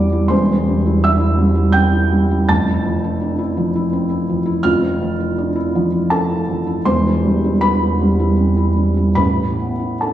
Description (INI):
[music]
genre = neoclassical minimalist piano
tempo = 70-84 BPM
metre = 3/4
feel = rubato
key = unclear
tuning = A4 = 440 Hz
[part]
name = felt-muted upright piano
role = solo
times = 0.0-10.1 s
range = E1 to A6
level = -14 LUFS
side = right 1 dB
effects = none
[sound]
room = wet recital hall reverb, RT60 1.8 s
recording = heard from further back in the room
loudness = -14 LUFS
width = side -12 dB against mid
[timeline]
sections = 0.0-10.1 A section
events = none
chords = 0.0 Cmaj7/E; 2.5 Fmaj7; 6.8 Cmaj7/E; 9.2 Asus2